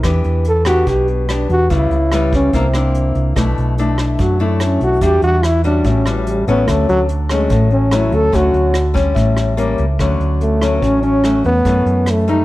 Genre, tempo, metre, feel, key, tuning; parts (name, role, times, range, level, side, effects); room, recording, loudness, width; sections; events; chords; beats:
bossa nova; 145 BPM; 4/4; straight; D major; A4 = 441 Hz
nylon-string guitar; accompaniment; 0.0-12.4 s; F#2 to G4; -18 LUFS; left 3 dB
hollow-body short-scale fingered electric bass; bass; 0.0-12.4 s; A1 to F#2; -17 LUFS; right 1 dB
vintage brush drum kit; drums; 0.0-12.4 s; hi-hat, kick drum, rim click; -23 LUFS; right 1 dB
breathy trombone; melody; 0.5-12.4 s; E3 to A4; -16 LUFS; equal
light reverb; -12 LUFS; side -17 dB against mid
0.0-10.0 A section; 10.0-12.4 B section
trombone solo 0.0-10.0
0.0 Em7; 1.7 C#m7b5; 2.5 C9; 3.4 Bm7; 5.0 Em9; 5.8 A6; 6.7 Dmaj7; 9.2 A7b9; 10.0 Dmaj7; 11.7 F#m7
| 0.04 0.45 0.86 1.28 | 1.70 2.11 2.53 2.94 | 3.35 3.77 4.18 4.60 | 5.01 5.43 5.84 6.26 | 6.67 7.09 7.50 7.92 | 8.33 8.75 9.16 9.57 | 9.99 10.40 10.82 11.23 | 11.65 12.06